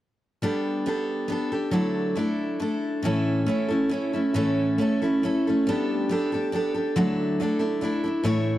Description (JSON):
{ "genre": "rock", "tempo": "138 BPM", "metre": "3/4", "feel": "straight", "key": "unclear", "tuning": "A4 = 439 Hz", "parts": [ { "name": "picked steel-string acoustic guitar", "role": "solo", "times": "0.4-8.6 s", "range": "A2 to C#5", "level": "-22 LUFS", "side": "equal", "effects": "analog delay" } ], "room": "moderate spring reverb, RT60 1.7 s", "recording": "echo-heavy mix", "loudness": "-22 LUFS", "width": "side -14 dB against mid", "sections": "0.4-5.7 A section; 5.7-8.6 B section", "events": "none", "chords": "0.4 Gadd9; 1.7 Dadd9; 3.1 A; 5.7 Gadd9; 7.0 Dadd9" }